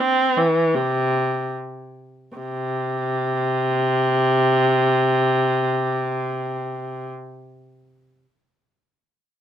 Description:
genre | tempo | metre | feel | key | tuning
classical, baroque-style suite movement for unaccompanied viola | free time | none | none | C major | A4 = 440 Hz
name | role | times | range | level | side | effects
warm viola | solo | 0.0-7.1 s | C3 to C4 | -19 LUFS | equal | none
room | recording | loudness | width
light reverb | minimal, uncompressed stereo recording | -18 LUFS | side -10 dB against mid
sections
0.0-2.4 A section; 2.4-7.3 B section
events
slowing down 0.0-2.4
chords
none

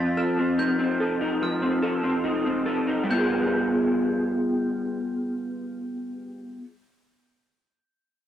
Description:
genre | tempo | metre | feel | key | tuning
indie pop | 72 BPM | 4/4 | straight | unclear | A4 = 440 Hz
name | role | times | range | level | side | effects
glockenspiel with hard plastic mallets | melody | 0.0-6.6 s | F6 to A6 | -33 LUFS | equal | lush chorus, cassette tape, analog delay, plate reverb
electric guitar through a small old amp | accompaniment | 0.0-6.7 s | F3 to A4 | -23 LUFS | equal | ensemble chorus, vibrato effect, cassette tape, plate reverb
room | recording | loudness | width
wet booth ambience, RT60 0.2 s | home recording on cassette | -23 LUFS | side -10 dB against mid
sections
0.0-3.1 A section; 3.1-6.4 B section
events
none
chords
0.0 F7; 3.1 G7b9

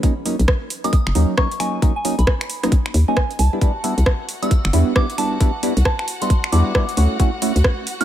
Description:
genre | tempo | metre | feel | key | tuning
UK garage, two-step garage | 134 BPM | 4/4 | swing 62% on 16ths | unclear | A4 = 440 Hz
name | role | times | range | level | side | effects
percussive organ stab | stabs | 0.0-8.0 s | F#3 to F#4 | -23 LUFS | right 1 dB | chorus, phaser
electronic kick drum | drums | 0.0-7.8 s | none | -17 LUFS | equal | none
garage drum kit | drums | 0.0-8.0 s | finger snaps, hi-hat, rim click | -24 LUFS | right 1 dB | overdrive
hollow knocking FM bass | bass | 0.4-7.6 s | F#1 to E2 | -14 LUFS | equal | none
soft synth bell | melody | 0.8-8.0 s | G#5 to F#6 | -26 LUFS | right 1 dB | chorus, phaser, digital delay
warm symphonic violin section | sustained chords | 3.6-8.0 s | F#4 to F#5 | -32 LUFS | equal | sidechain pumping
room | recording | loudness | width
little or no reverb | none | -16 LUFS | side -11 dB against mid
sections
0.0-8.0 A section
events
none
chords
0.0 Bmaj9 (rootless); 3.4 Cmaj9 (rootless); 7.0 Dmaj9

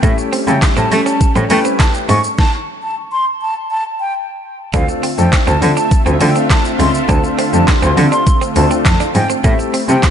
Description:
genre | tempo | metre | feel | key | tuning
dance-pop | 102 BPM | 4/4 | straight | D minor | A4 = 442 Hz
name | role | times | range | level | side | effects
breathy mellow silver concert flute | melody | 0.0-10.0 s | E5 to C#6 | -20 LUFS | equal | sidechain pumping, diffuse ambient delay
warm concert grand piano | accompaniment | 0.0-10.1 s | A3 to B4 | -21 LUFS | left 4 dB | wide subtle chorus, sidechain pumping
filtered supersaw swell | sustained chords | 0.0-10.1 s | D3 to E5 | -20 LUFS | equal | lush chorus, sidechain pumping
direct-recorded clean electric guitar | riff | 0.0-9.8 s | A3 to D4 | -24 LUFS | right 6 dB | lush chorus
rich cello | bass | 0.0-10.0 s | C#2 to A3 | -15 LUFS | equal | sidechain pumping
pop drum kit | drums | 0.0-10.1 s | handclaps, hi-hat, kick drum, shaker, snare drum | -15 LUFS | equal | overdrive
room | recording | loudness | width
moderate lush hall reverb, RT60 1.7 s | dreamy mix soaked in reverb, nothing above 11.0 kHz | -11 LUFS | side -8 dB against mid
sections
0.0-4.7 A section; 4.7-10.1 A section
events
drop 0.0-4.7, 4.7-10.1; stop 2.4-4.7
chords
0.0 A7; 4.7 Dm7; 9.4 Am7

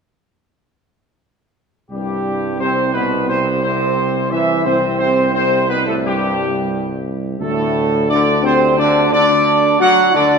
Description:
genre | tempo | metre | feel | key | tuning
classical, ceremonial fanfare | 88 BPM | 4/4 | straight | C lydian | A4 = 440 Hz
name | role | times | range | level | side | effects
dark trumpet section | melody | 1.9-10.4 s | G4 to F#5 | -16 LUFS | right 2 dB | none
warm French horn section | sustained chords | 1.9-10.4 s | G3 to F#4 | -20 LUFS | left 4 dB | none
warm trombone section | sustained chords | 1.9-10.4 s | G2 to F#3 | -23 LUFS | right 1 dB | none
warm tuba | bass | 1.9-10.4 s | C2 to D2 | -21 LUFS | right 2 dB | none
room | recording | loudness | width
wet concert hall reverb, RT60 2.0 s | minimal, uncompressed stereo recording | -14 LUFS | side -5 dB against mid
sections
1.9-10.4 A section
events
none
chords
1.9 C5; 7.4 D5

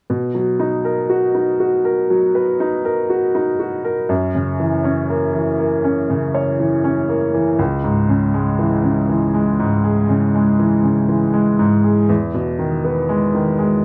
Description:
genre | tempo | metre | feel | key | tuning
pop | 60 BPM | 4/4 | straight | B major | A4 = 441 Hz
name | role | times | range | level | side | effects
clear upright piano | accompaniment | 0.1-13.8 s | C#2 to C#5 | -18 LUFS | equal | none
room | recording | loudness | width
wet studio reverb, RT60 0.7 s | none | -18 LUFS | mono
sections
0.1-13.8 A section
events
none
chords
0.1 Bmaj7; 4.1 F#7; 7.6 C#m; 12.1 Emaj7

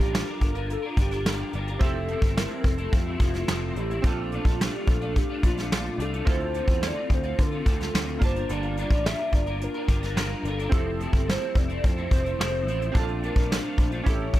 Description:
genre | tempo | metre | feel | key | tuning
indie pop, bedroom pop | 108 BPM | 4/4 | straight | unclear | A4 = 442 Hz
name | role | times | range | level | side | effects
warbly nostalgic lead | melody | 0.0-14.4 s | F4 to E5 | -32 LUFS | equal | analog chorus, slapback echo
chorused retro synth keys | accompaniment | 0.0-14.4 s | Bb3 to A5 | -36 LUFS | right 5 dB | cassette tape
electric guitar at the edge of break-up | accompaniment | 0.0-14.4 s | A2 to Bb4 | -32 LUFS | left 2 dB | ensemble chorus, vibrato effect
picked electric bass | bass | 0.0-14.4 s | F1 to D3 | -30 LUFS | equal | none
soft brush drum kit | drums | 0.1-14.4 s | hi-hat, kick drum, snare drum | -24 LUFS | equal | none
room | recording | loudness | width
small room ambience | none | -23 LUFS | side -14 dB against mid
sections
0.0-14.4 A section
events
none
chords
0.0 Gm7; 1.8 Fmaj7; 4.0 Bbmaj7; 6.3 Dm7; 8.2 Gm7; 10.7 Fmaj7; 13.0 Bbmaj7

